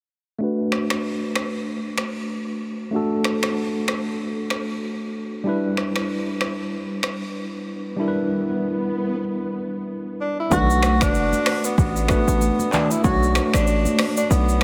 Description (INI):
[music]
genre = afrobeats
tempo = 95 BPM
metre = 4/4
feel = swing 58% on 16ths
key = B minor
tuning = A4 = 440 Hz
[part]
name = tine electric piano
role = accompaniment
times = 0.4-14.6 s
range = G3 to C#5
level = -26 LUFS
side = equal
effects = overdrive, low-pass filter
[part]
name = deep house drum kit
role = drums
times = 0.7-14.6 s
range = finger snaps, handclaps, hi-hat, kick drum, rim click, shaker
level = -28 LUFS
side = equal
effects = none
[part]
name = swell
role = sound effects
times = 7.6-9.3 s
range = none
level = -36 LUFS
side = equal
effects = none
[part]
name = breathy tenor saxophone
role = melody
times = 10.2-14.6 s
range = B3 to F#4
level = -25 LUFS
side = equal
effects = tape echo
[part]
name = hard-hitting 808-style bass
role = bass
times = 10.5-14.6 s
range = F#1 to B1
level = -23 LUFS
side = equal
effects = none
[part]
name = congas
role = percussion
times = 10.5-14.0 s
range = none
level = -30 LUFS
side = equal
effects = none
[sound]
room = moderate huge ambient reverb, RT60 6.0 s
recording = dreamy mix soaked in reverb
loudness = -23 LUFS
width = mono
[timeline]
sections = 0.4-10.5 A section; 10.5-14.6 B section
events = filter sweep on tine electric piano 0.4-10.5; swell 7.8-10.5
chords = 0.4 Bm7; 5.5 Em7; 10.5 Bm7